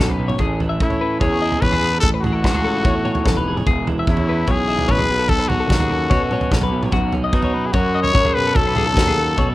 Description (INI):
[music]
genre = math rock and midwest emo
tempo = 147 BPM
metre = 4/4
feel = straight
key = A lydian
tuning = A4 = 440 Hz
[part]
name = growling trumpet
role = melody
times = 0.0-9.5 s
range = D#4 to C#5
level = -21 LUFS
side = left 2 dB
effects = none
[part]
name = twelve-string electric guitar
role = accompaniment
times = 0.0-9.5 s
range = E2 to G#4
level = -25 LUFS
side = right 4 dB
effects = none
[part]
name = twelve-string electric guitar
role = arpeggios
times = 0.0-9.5 s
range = F#4 to E5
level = -25 LUFS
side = left 5 dB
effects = plate reverb
[part]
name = fuzz fingered electric bass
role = bass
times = 0.0-9.5 s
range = E1 to B2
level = -22 LUFS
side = equal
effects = overdrive
[part]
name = loose indie drum kit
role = drums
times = 0.0-9.5 s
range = kick drum, snare drum, toms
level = -20 LUFS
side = equal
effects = none
[sound]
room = light reverb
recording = rough home demo mix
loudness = -16 LUFS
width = side -16 dB against mid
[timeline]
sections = 0.0-9.5 A section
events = none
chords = 0.4 Amaj9#11; 3.7 E6; 5.1 B9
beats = | 0.40 0.81 1.21 1.62 | 2.03 2.44 2.85 3.26 | 3.66 4.07 4.48 4.89 | 5.30 5.71 6.11 6.52 | 6.93 7.34 7.75 8.15 | 8.56 8.97 9.38